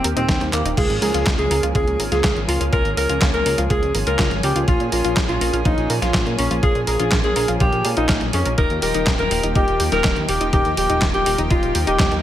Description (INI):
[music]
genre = italo disco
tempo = 123 BPM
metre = 4/4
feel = straight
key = unclear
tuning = A4 = 441 Hz
[part]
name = mellow alto saxophone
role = melody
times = 0.0-12.2 s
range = Bb3 to Bb4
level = -21 LUFS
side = equal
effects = tape echo
[part]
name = lush unison pad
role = sustained chords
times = 0.0-12.2 s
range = Eb3 to Ab4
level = -26 LUFS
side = equal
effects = chorus
[part]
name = analog pluck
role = arpeggios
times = 0.0-12.1 s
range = Eb4 to F5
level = -28 LUFS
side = left 4 dB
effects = chorus, tape echo
[part]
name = chorused synth bass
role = bass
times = 0.0-12.2 s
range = Eb1 to Bb2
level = -23 LUFS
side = equal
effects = none
[part]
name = detuned 8-bit digital drum machine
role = drums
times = 0.0-12.2 s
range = crash cymbal, handclaps, hi-hat, snare drum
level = -24 LUFS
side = equal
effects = gated reverb
[part]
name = electronic kick drum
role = drums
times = 0.3-12.1 s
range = none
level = -21 LUFS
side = equal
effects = none
[sound]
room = digital ambience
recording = none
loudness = -16 LUFS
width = side -12 dB against mid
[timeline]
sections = 0.8-12.2 A section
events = drum fill 0.5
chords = 0.0 Eb6; 0.8 Db6; 4.7 Bbm7; 8.6 Ebadd9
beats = 0.29 | 0.78 1.26 1.75 2.24 | 2.73 3.21 3.70 4.19 | 4.68 5.17 5.65 6.14 | 6.63 7.12 7.61 8.09 | 8.58 9.07 9.56 10.04 | 10.53 11.02 11.51 11.99